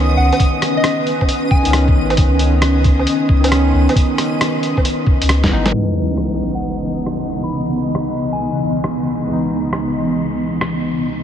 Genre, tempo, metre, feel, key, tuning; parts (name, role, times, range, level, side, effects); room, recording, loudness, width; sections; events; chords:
future garage; 135 BPM; 4/4; swing 67% on 16ths; C# minor; A4 = 440 Hz
barky tine electric piano; accompaniment; 0.0-11.2 s; C#2 to D#4; -21 LUFS; moving between left 3 dB and right 4 dB; auto-pan, sidechain pumping, low-pass filter, ping-pong delay
granular cloud pad; sustained chords; 0.0-11.2 s; C#3 to D#5; -20 LUFS; left 1 dB; built-in reverb, sidechain pumping
soft dub sub bass; bass; 0.0-5.7 s; G#1 to C#2; -15 LUFS; equal; sidechain pumping
backwards swelling texture; texture; 0.0-5.7 s; D#6; -28 LUFS; left 1 dB; built-in reverb, analog chorus
soft struck synth lead; melody; 0.2-1.9, 6.5-8.6 s; D#5 to B5; -27 LUFS; left 1 dB; chorus, vintage 12-bit sampler grit, analog delay
lo-fi sampler-style drum kit; drums; 0.3-10.7 s; hi-hat, rim click, snare drum, woodblock; -23 LUFS; equal
electronic kick drum; drums; 0.4-5.5 s; -14 LUFS; equal
sub drop; sound effects; 5.7-7.5 s; -24 LUFS; equal
wet huge ambient reverb, RT60 8.9 s; dreamy mix soaked in reverb, vinyl crackle, low-pass filter, nothing above 10.5 kHz; -14 LUFS; side -9 dB against mid
0.0-5.7 A section; 5.7-11.2 B section
drum fill 5.4-5.7; band accent 5.6; impact 5.7-7.5; filter sweep 5.7-11.2
0.0 C#7sus2; 5.7 C#m9